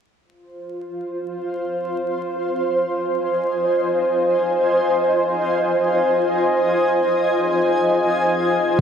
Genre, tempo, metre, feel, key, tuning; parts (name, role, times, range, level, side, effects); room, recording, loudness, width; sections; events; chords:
ambient; free time; F minor; A4 = 440 Hz
granular cloud pad; sustained chords; 0.7-8.8 s; F4 to Ab5; -19 LUFS; left 2 dB; built-in reverb
bubbling stepped-filter texture; texture; 0.6-8.8 s; C5; -23 LUFS; right 4 dB; chorus, built-in reverb
wet echo chamber reverb, RT60 2.2 s; vinyl crackle; -17 LUFS; side -7 dB against mid
0.2-8.8 A section
0.2 Fm7